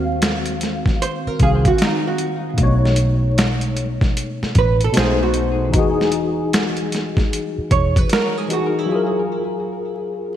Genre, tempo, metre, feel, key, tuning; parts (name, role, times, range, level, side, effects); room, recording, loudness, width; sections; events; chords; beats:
R&B, neo-soul; 76 BPM; 4/4; swing 63% on 16ths; A4 = 440 Hz
barky tine electric piano; accompaniment; 0.0-10.4 s; B2 to F5; -21 LUFS; left 2 dB; ensemble chorus
vintage muted fingered electric bass; bass; 0.0-8.0 s; E1 to Eb2; -20 LUFS; equal
boom bap sampler-style drum kit; drums; 0.2-8.7 s; hi-hat, kick drum, snare drum; -20 LUFS; equal; overdrive, gated reverb
archtop guitar, miked and amplified; second line; 1.0-9.1 s; Eb4 to Db5; -23 LUFS; right 6 dB; analog chorus, ping-pong delay
moderate lush hall reverb, RT60 2.3 s; bright 1980s-style digital production, vinyl crackle; -16 LUFS; side -11 dB against mid
0.0-10.4 A section
break 8.9-10.4
0.0 Ebm69; 2.6 B9; 4.9 B7b9; 5.7 Emaj9; 8.9 Gbmaj9
0.21 1.00 1.79 | 2.58 3.37 4.16 4.95 | 5.74 6.53 7.32 8.11 | 8.89 9.68